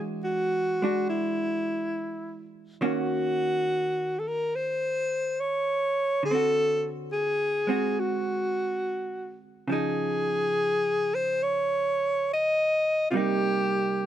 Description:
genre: jazz ballad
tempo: 70 BPM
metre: 4/4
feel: swing 68% on 8ths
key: unclear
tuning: A4 = 440 Hz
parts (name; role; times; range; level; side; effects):
- clear alto saxophone; melody; 0.0-14.1 s; E4 to Eb5; -25 LUFS; equal; none
- vintage hollow-body jazz guitar; accompaniment; 0.0-14.1 s; C3 to F#4; -31 LUFS; right 3 dB; none
room: little or no reverb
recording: close, detailed microphones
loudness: -24 LUFS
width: side -11 dB against mid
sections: 0.0-14.1 A section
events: none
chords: 0.0 E9; 2.8 Ebm7; 6.2 D7#11; 9.7 Dbadd9; 13.1 Cm7

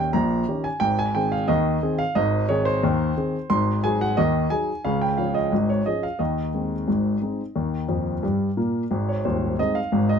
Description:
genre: ragtime piano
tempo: 89 BPM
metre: 2/4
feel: straight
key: Ab major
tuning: A4 = 442 Hz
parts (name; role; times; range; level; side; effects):
- warm grand piano; solo; 0.0-10.2 s; Eb1 to C6; -20 LUFS; equal; none
room: light reverb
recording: close, detailed microphones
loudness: -21 LUFS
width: side -7 dB against mid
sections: 0.0-10.2 A section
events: grand piano fill 7.9-8.9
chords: 0.0 Eb7; 0.8 Ab; 3.5 Ab5; 4.8 Db; 6.2 Ab/Eb; 7.5 Eb; 8.9 Ab

